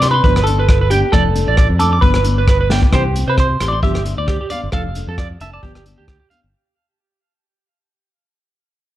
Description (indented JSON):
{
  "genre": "highlife guitar band",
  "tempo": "134 BPM",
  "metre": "4/4",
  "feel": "swing 55% on 16ths",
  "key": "unclear",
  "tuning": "A4 = 440 Hz",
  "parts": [
    { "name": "semi-hollow electric guitar", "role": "melody", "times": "0.0-6.2 s", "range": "G4 to F5", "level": "-20 LUFS", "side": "equal", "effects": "phaser" },
    { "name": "nylon-string guitar", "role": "accompaniment", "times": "0.0-6.5 s", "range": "E3 to G4", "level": "-24 LUFS", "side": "left 6 dB", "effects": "none" },
    { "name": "electric guitar at the edge of break-up", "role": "arpeggios", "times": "0.0-6.4 s", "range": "G4 to D6", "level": "-21 LUFS", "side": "right 5 dB", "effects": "analog delay" },
    { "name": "fingered electric bass", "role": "bass", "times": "0.0-6.5 s", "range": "F1 to C3", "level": "-18 LUFS", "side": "equal", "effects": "none" },
    { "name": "crunchy breakbeat drum kit", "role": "drums", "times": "0.0-6.4 s", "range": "hi-hat, kick drum, rim click, snare drum", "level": "-17 LUFS", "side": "equal", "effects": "none" }
  ],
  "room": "light reverb",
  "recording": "none",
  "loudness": "-12 LUFS",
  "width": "side -14 dB against mid",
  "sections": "0.0-2.9 A section; 2.9-6.5 B section",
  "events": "drum fill 2.7; fade-out 2.9-6.5",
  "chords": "0.2 G7; 1.1 Dm/F; 2.0 G7; 2.9 Cadd9; 3.8 G7; 4.7 Dm/F; 5.6 G7"
}